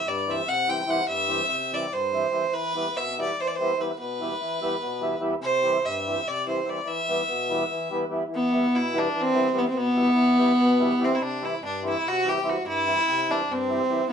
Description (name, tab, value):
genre	balkan folk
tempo	291 BPM (eighths)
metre	7/8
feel	straight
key	E minor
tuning	A4 = 438 Hz
part	rich fiddle	melody	0.0-14.1 s	B3 to G5	-23 LUFS	equal	none
part	mellow accordion	accompaniment	0.1-14.1 s	G2 to E4	-28 LUFS	equal	none
room	wet studio reverb, RT60 0.5 s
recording	band playing live in one room, nothing above 10.9 kHz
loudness	-22 LUFS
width	side -7 dB against mid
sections	0.0-8.3 A section; 8.3-14.1 A section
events	none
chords	0.0 C; 2.5 Em; 5.4 C; 6.9 Em; 11.2 C